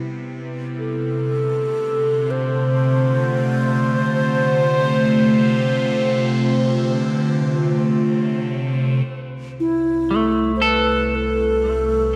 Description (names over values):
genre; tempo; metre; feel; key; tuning
ambient; free time; none; none; unclear; A4 = 440 Hz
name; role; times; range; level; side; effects
evolving wavetable pad; sustained chords; 0.0-12.2 s; C3 to C5; -24 LUFS; equal; phaser, built-in reverb
bowed-like drone; drone; 0.0-12.2 s; C3; -26 LUFS; equal; built-in reverb
mellow hollow alto flute; melody; 0.8-12.2 s; E4 to C5; -24 LUFS; equal; diffuse ambient delay
warm sub bass; bass; 9.1-12.2 s; C2; -31 LUFS; equal; none
clean electric guitar; arpeggios; 10.1-12.2 s; A3 to A4; -22 LUFS; equal; spring reverb, diffuse ambient delay
room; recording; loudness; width
wet lush hall reverb, RT60 2.6 s; none; -19 LUFS; mono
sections
0.0-9.1 A section; 9.1-12.2 B section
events
fade-in on synth drone 0.0-9.1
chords
0.0 Cmaj7; 0.8 Dm7; 9.1 Cmaj7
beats
free time